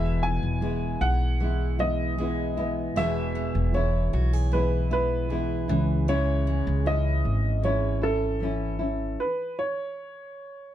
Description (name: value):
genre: acoustic pop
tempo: 77 BPM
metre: 4/4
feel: straight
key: unclear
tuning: A4 = 441 Hz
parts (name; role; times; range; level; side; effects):
- warm upright piano; melody; 0.0-10.7 s; A4 to G#5; -30 LUFS; right 1 dB; none
- nylon-string guitar; accompaniment; 0.0-9.2 s; E2 to E4; -30 LUFS; left 1 dB; none
- picked steel-string acoustic guitar; arpeggios; 0.0-9.3 s; E3 to G#4; -35 LUFS; right 4 dB; none
- upright bass; bass; 0.0-9.1 s; E1 to C#2; -26 LUFS; equal; none
room: little or no reverb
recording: dark, warm production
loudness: -23 LUFS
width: side -11 dB against mid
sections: 0.0-10.7 A section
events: stop 9.2-10.7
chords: 0.0 E; 5.7 C#m; 9.2 N.C.